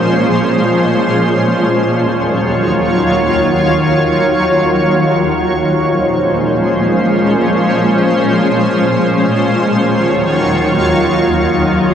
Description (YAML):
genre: hip hop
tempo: free time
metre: none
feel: none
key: Bb minor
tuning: A4 = 439 Hz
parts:
  - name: shimmering ambient pad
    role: solo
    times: 0.0-11.9 s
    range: Eb2 to Eb5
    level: -11 LUFS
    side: equal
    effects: chorus, built-in reverb
room: moderate huge ambient reverb, RT60 6.9 s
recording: none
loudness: -11 LUFS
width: side -8 dB against mid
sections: 0.0-11.9 A section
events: none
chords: 0.0 Bbm7; 1.9 Ebm7; 5.7 Bbm7; 9.5 Ebm7